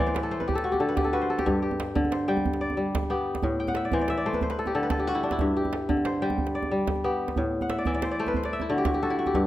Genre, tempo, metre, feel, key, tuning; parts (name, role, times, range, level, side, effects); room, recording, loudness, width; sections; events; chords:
west african traditional, West African string and xylophone music; 122 BPM (dotted quarters); 12/8; straight; G major; A4 = 439 Hz
kora; arpeggios; 0.0-9.5 s; G2 to G5; -25 LUFS; left 1 dB
djembe; percussion; 0.0-9.4 s; -31 LUFS; right 3 dB
moderate recital hall reverb, RT60 1.5 s; close, detailed microphones; -24 LUFS; side -14 dB against mid
0.0-9.3 A section
kora fill 0.0-1.5, 3.6-5.4, 7.6-9.3
0.5 D; 1.5 G; 3.4 A5; 4.4 D; 5.4 G; 7.4 A5; 8.4 D